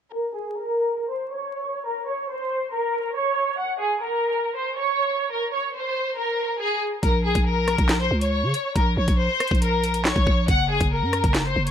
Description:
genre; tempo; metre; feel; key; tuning
hip hop, drill; 139 BPM; 4/4; half-time; Bb minor; A4 = 440 Hz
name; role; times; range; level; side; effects
warm studio violin section; melody; 0.1-11.7 s; Ab4 to Gb5; -23 LUFS; equal; low-pass filter
growling 808-style bass; bass; 7.0-11.7 s; Gb1 to Db3; -24 LUFS; equal; none
drill drum kit; drums; 7.0-11.7 s; handclaps, hi-hat, kick drum, rim click, snare drum; -22 LUFS; equal; none
room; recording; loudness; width
light reverb; vinyl crackle; -21 LUFS; side -9 dB against mid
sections
0.1-7.0 A section; 7.0-11.7 B section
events
filter sweep on violin section 0.1-7.0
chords
0.1 N.C.; 7.0 Bbm; 10.5 Gb

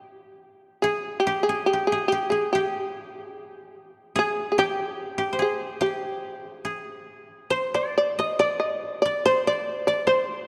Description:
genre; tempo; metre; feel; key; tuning
japanese traditional, Japanese chamber music; 68-76 BPM; 2/4; rubato; G miyako bushi; A4 = 438 Hz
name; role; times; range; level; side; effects
shamisen; melody; 0.0-10.5 s; G4 to Eb5; -27 LUFS; equal; none
koto; second line; 0.0-10.5 s; G4 to Eb5; -30 LUFS; equal; none
room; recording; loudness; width
wet cathedral reverb, RT60 4.0 s; dark, warm production; -25 LUFS; mono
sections
0.8-10.5 A section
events
none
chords
none

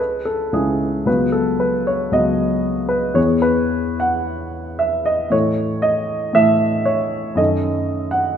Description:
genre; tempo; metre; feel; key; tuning
classical, romantic character piece for solo piano; 114 BPM; 4/4; uneven beats, rubato; unclear; A4 = 440 Hz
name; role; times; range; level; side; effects
warm baby grand piano; solo; 0.0-8.4 s; C#2 to F#5; -16 LUFS; equal; none
room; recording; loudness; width
wet recital hall reverb, RT60 1.7 s; none; -16 LUFS; side -8 dB against mid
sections
0.0-8.4 A section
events
none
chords
0.0 C#m; 1.1 B/C#; 3.2 E; 5.3 A; 7.4 D#m7b5/F#

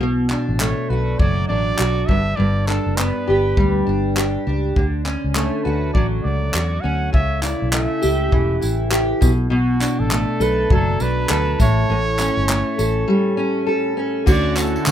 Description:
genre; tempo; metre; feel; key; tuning
acoustic pop; 101 BPM; 4/4; swing 60% on 16ths; D major; A4 = 439 Hz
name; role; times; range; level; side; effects
fingerpicked steel-string acoustic guitar; accompaniment; 0.0-14.9 s; G2 to A4; -20 LUFS; equal; double-tracked left and right
vintage muted fingered electric bass; bass; 0.0-14.9 s; E1 to D3; -22 LUFS; equal; none
natural country drum kit; drums; 0.3-14.9 s; crash cymbal, handclaps, kick drum, tambourine; -20 LUFS; equal; none
breathy trumpet; melody; 0.6-14.9 s; F#4 to F#5; -25 LUFS; right 2 dB; none
glassy FM pad; sustained chords; 14.6-14.9 s; D3 to F#4; -27 LUFS; equal; ensemble chorus, built-in reverb
tambourine; percussion; 14.3-14.9 s; none; -33 LUFS; equal; none
room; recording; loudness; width
light reverb; rough home demo mix; -16 LUFS; side -10 dB against mid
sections
0.0-14.3 A section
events
none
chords
0.0 Bm7; 2.1 G; 4.8 Dmaj7; 7.1 A7; 9.2 Bm7; 11.6 A7; 14.3 Dmaj7

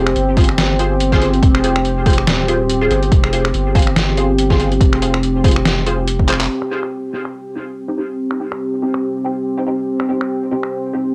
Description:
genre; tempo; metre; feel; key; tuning
deep dubstep; 142 BPM; 4/4; swing 56% on 16ths, half-time; C minor; A4 = 440 Hz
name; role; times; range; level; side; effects
deep dark ambient pad; sustained chords; 0.0-11.1 s; C4 to G4; -22 LUFS; equal; chorus, built-in reverb
filtered dub chord stab; stabs; 0.0-11.1 s; C4 to C5; -24 LUFS; equal; phaser, ensemble chorus, vintage 12-bit sampler grit, dub echo
soft dub sub bass; bass; 0.0-6.5 s; Eb1 to G1; -21 LUFS; equal; none
trip hop sampler-style drum kit; drums; 0.1-10.7 s; finger snaps, handclaps, hi-hat, snare drum; -23 LUFS; equal; overdrive, low-pass filter on hats, low-pass filter on snare
electronic kick drum; drums; 0.4-6.3 s; none; -16 LUFS; equal; none
room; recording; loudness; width
moderate studio reverb, RT60 0.5 s; home recording on cassette; -16 LUFS; mono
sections
0.0-6.5 A section; 6.5-11.1 B section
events
drop 0.0-6.5; drum fill 6.3; band accent 6.4; filter sweep on synth stab 6.5-11.1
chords
0.0 Fm; 6.5 Cm

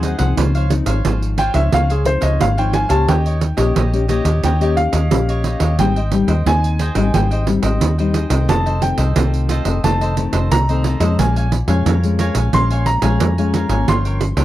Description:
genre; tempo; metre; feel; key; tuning
samba and choro; 89 BPM; 4/4; straight; F minor; A4 = 440 Hz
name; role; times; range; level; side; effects
cavaquinho; accompaniment; 0.0-14.4 s; Eb4 to Ab5; -26 LUFS; right 1 dB; none
nylon-string guitar; accompaniment; 0.0-14.4 s; F2 to G4; -22 LUFS; left 5 dB; none
vintage muted fingered electric bass; bass; 0.0-14.4 s; F1 to F2; -17 LUFS; equal; none
pandeiro; percussion; 0.0-14.4 s; none; -21 LUFS; right 6 dB; none
warm grand piano; melody; 1.4-14.4 s; Ab4 to C6; -22 LUFS; equal; none
room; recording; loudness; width
little or no reverb; dry, close 1970s-style studio recording; -14 LUFS; side -14 dB against mid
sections
0.0-14.4 A section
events
grand piano solo 0.0-14.4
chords
0.4 Dbmaj9; 3.1 Eb7; 5.8 Abmaj7; 8.5 F7; 11.2 Bbm7; 13.9 Gm7b5

